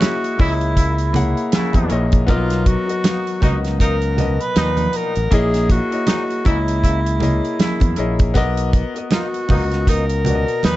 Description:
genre	lush 1970s-style soul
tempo	79 BPM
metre	4/4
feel	swing 58% on 16ths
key	unclear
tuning	A4 = 440 Hz
part	mellow tenor saxophone	melody	0.0-10.8 s	Fb4 to B4	-22 LUFS	equal	none
part	clear grand piano	accompaniment	0.0-10.8 s	B2 to Gb5	-23 LUFS	left 3 dB	none
part	warm horn section	stabs	0.0-10.8 s	A#2 to Fb4	-28 LUFS	equal	tape echo
part	damped 70s drum kit	drums	0.0-10.8 s	hi-hat, kick drum, snare drum	-18 LUFS	equal	none
part	congas	percussion	0.0-10.8 s	none	-25 LUFS	right 4 dB	none
part	modern bright fingered electric bass	bass	0.4-10.8 s	A1 to Fb2	-20 LUFS	equal	none
room	small room ambience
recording	dark, warm production, nothing above 8.0 kHz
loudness	-15 LUFS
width	side -16 dB against mid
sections	0.0-10.8 A section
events	none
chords	0.0 Gb13; 2.3 Bmaj7; 5.3 Gb13/Bb; 8.4 Bmaj7

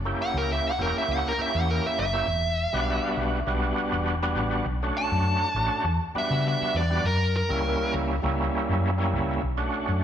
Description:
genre	straight-eighth soul blues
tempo	101 BPM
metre	4/4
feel	swing 53% on 16ths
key	unclear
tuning	A4 = 440 Hz
part	hollow-body short-scale fingered electric bass	bass	0.0-10.0 s	E1 to C#3	-27 LUFS	equal	none
part	overdriven tonewheel organ	accompaniment	0.1-10.0 s	G3 to G4	-28 LUFS	right 1 dB	slow rotary speaker, chorus vibrato, slapback echo
part	dark smooth lead guitar	melody	0.2-7.9 s	A#4 to A5	-27 LUFS	equal	overdrive, slapback echo
room	light reverb, digital ambience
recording	live gig heard through the venue's PA, club reverb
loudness	-23 LUFS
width	side -9 dB against mid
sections	0.0-9.4 A section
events	lead electric guitar solo 0.0-9.4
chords	0.0 F#7b9; 2.3 Em7; 4.7 Bm7; 5.8 Em7; 7.0 F#7b9; 9.4 Bm7

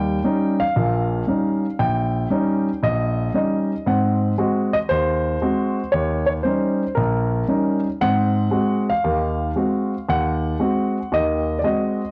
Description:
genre	solo jazz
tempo	116 BPM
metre	4/4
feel	swing 68% on 8ths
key	unclear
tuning	A4 = 440 Hz
part	warm grand piano	solo	0.0-12.1 s	Bb1 to G5	-21 LUFS	equal	cassette tape
room	light reverb, studio reverb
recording	home recording on cassette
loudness	-21 LUFS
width	mono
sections	0.0-12.1 A section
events	none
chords	0.0 Eb7; 3.9 Ab7; 5.9 Eb7; 8.0 Ab7

